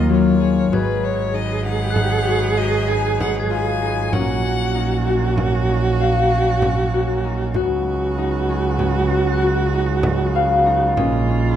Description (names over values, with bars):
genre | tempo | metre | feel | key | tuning
contemporary instrumental, chamber music in an uneven meter | 193 BPM (eighths) | 11/8 | straight | unclear | A4 = 441 Hz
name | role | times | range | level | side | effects
clear violin | melody | 0.0-5.4 s | Cb5 to Ab5 | -26 LUFS | left 6 dB | none
warm cello | second line | 0.0-11.6 s | F4 to Ab4 | -23 LUFS | right 4 dB | none
hand-pumped harmonium | sustained chords | 0.0-11.6 s | Db3 to Cb5 | -28 LUFS | equal | none
Celtic harp | arpeggios | 0.0-11.6 s | Gb3 to F5 | -22 LUFS | left 5 dB | none
warm double bass | bass | 0.0-11.6 s | Ab1 to Eb2 | -21 LUFS | right 3 dB | none
frame drum | percussion | 0.7-11.4 s | none | -26 LUFS | right 1 dB | none
glockenspiel with hard plastic mallets | texture | 0.7-10.5 s | Gb6 to Ab6 | -35 LUFS | left 1 dB | none
room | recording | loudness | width
wet recital hall reverb, RT60 1.5 s | dark, warm production | -16 LUFS | side -10 dB against mid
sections
0.7-11.6 A section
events
none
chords
0.0 Ebsus2; 0.7 Abm7; 4.1 Gb/Bb; 7.6 Db7sus4; 11.0 Bbm7